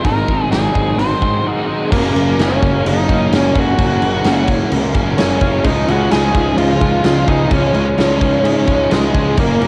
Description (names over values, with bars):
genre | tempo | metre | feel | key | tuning
rock, shoegaze and dream pop | 129 BPM | 4/4 | straight | Gb lydian | A4 = 441 Hz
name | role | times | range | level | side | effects
octave-fuzz lead guitar | melody | 0.0-9.7 s | Ab3 to C5 | -21 LUFS | equal | distortion, cassette tape, analog delay
electric guitar through a small old amp | arpeggios | 0.0-9.7 s | Eb3 to Ab4 | -28 LUFS | equal | none
crunchy overdriven guitar | riff | 0.0-9.7 s | Gb2 to Eb4 | -22 LUFS | equal | analog chorus, cassette tape
electric guitar through a small old amp | riff | 0.0-9.7 s | Ab2 to Ab4 | -26 LUFS | equal | none
fuzz picked electric bass | bass | 0.0-9.7 s | Gb1 to Ab2 | -20 LUFS | equal | overdrive
huge arena drum kit | drums | 0.0-9.7 s | crash cymbal, hi-hat, kick drum, snare drum | -21 LUFS | equal | cassette tape
room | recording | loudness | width
light reverb, studio reverb | home recording on cassette | -15 LUFS | mono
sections
0.0-1.9 A section; 1.9-9.7 B section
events
break 1.5-1.9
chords
0.0 Ab7; 1.9 Gbadd9; 5.7 Dbadd9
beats
| 0.04 0.51 0.98 1.45 | 1.92 2.39 2.85 3.32 | 3.79 4.25 4.72 5.19 | 5.65 6.12 6.58 7.05 | 7.51 7.98 8.45 8.91 | 9.38